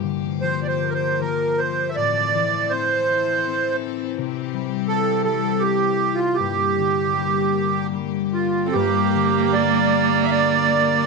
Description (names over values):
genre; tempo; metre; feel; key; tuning
celtic folk, Celtic slow air; 72-84 BPM; 3/4; rubato; G dorian; A4 = 440 Hz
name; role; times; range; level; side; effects
concert harp; accompaniment; 0.0-11.1 s; G1 to E4; -24 LUFS; left 12 dB; none
bright chamber string section; sustained chords; 0.0-11.0 s; D3 to A4; -32 LUFS; left 13 dB; none
accordion; melody; 0.4-11.1 s; F4 to E5; -20 LUFS; right 6 dB; light tremolo tuning
rich viola; second line; 8.7-11.1 s; Bb3 to C4; -21 LUFS; right 14 dB; none
room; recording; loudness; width
light reverb, small room ambience; 1960s-style stereo with parts hard left and right; -18 LUFS; side -3 dB against mid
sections
0.0-8.7 A section; 8.7-11.1 B section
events
none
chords
0.0 Gm7; 2.0 Am; 4.2 C; 6.4 Gm